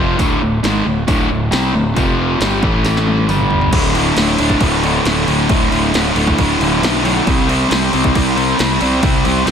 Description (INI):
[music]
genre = hard rock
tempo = 136 BPM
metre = 4/4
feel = straight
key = unclear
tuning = A4 = 439 Hz
[part]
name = overdriven electric guitar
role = riff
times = 0.0-9.5 s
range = D2 to C4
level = -14 LUFS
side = equal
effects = spring reverb, slapback echo
[part]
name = fuzz fingered electric bass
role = bass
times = 0.0-9.5 s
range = D1 to C2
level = -20 LUFS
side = equal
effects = overdrive
[part]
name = punchy analog drum machine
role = drums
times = 0.2-9.5 s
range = crash cymbal, hi-hat, kick drum, snare drum, toms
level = -19 LUFS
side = equal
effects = none
[sound]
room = moderate scoring stage reverb, RT60 1.8 s, digital ambience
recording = big arena sound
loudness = -12 LUFS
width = side -7 dB against mid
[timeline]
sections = 0.0-3.7 A section; 3.7-9.5 B section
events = drum fill 2.8-3.7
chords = 0.0 D5; 2.0 F5; 2.4 G5; 2.6 A5; 3.3 G5; 3.7 D5; 7.3 C5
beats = | 0.18 0.63 1.07 1.51 | 1.96 2.40 2.85 3.29 | 3.73 4.17 4.62 5.06 | 5.50 5.94 6.38 6.83 | 7.27 7.71 8.15 8.60 | 9.04 9.48